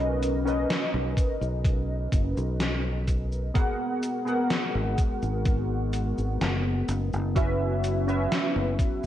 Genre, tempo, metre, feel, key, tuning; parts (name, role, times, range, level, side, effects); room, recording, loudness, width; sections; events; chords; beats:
vaporwave; 63 BPM; 4/4; straight; B major; A4 = 443 Hz
warbly lo-fi synth keys; accompaniment; 0.0-9.1 s; B3 to F#5; -29 LUFS; equal; analog chorus, analog delay
fingered electric bass; bass; 0.0-9.1 s; F#1 to B1; -28 LUFS; equal; tube saturation
gated 80s digital drum machine; drums; 0.2-9.1 s; cabasa, hi-hat, snare drum; -31 LUFS; left 1 dB; gated reverb, gated reverb snare, studio reverb
electronic kick drum; drums; 1.2-9.0 s; -25 LUFS; equal; studio reverb
warbly tape-like pad; sustained chords; 4.1-9.1 s; F#3 to A#4; -34 LUFS; left 3 dB; chorus, built-in reverb
light reverb; cassette tape; -24 LUFS; side -12 dB against mid
0.0-9.1 A section
0.0 Bmaj9; 3.6 G#m9; 6.9 F#7sus4
0.69 1.65 2.60 | 3.55 4.50 5.46 6.41 | 7.36 8.31